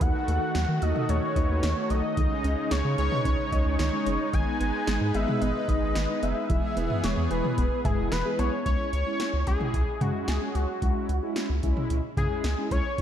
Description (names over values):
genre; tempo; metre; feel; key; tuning
synth-pop; 111 BPM; 4/4; straight; C# minor; A4 = 442 Hz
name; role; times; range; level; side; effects
fat analog lead; melody; 0.0-13.0 s; F#4 to G#5; -31 LUFS; left 2 dB; chorus, analog delay
mellow synth brass; accompaniment; 0.0-13.0 s; G#3 to B4; -32 LUFS; equal; chorus
brassy analog pad; sustained chords; 0.0-8.6 s; C#3 to B4; -33 LUFS; right 1 dB; chorus
soft round pluck; arpeggios; 0.0-8.5 s; D#3 to E5; -35 LUFS; right 3 dB; chorus, analog delay
round analog bass; bass; 0.0-13.0 s; E1 to D#3; -28 LUFS; equal; none
electro analog drum machine; drums; 0.0-13.0 s; cowbell, hi-hat, kick drum, snare drum, toms; -30 LUFS; equal; none
room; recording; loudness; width
moderate lush hall reverb, RT60 1.7 s; dreamy mix soaked in reverb; -24 LUFS; side -10 dB against mid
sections
0.0-8.7 A section; 8.7-13.0 B section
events
none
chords
0.0 D#dim; 2.2 C#sus2; 4.3 G#m; 6.5 E; 8.7 C#m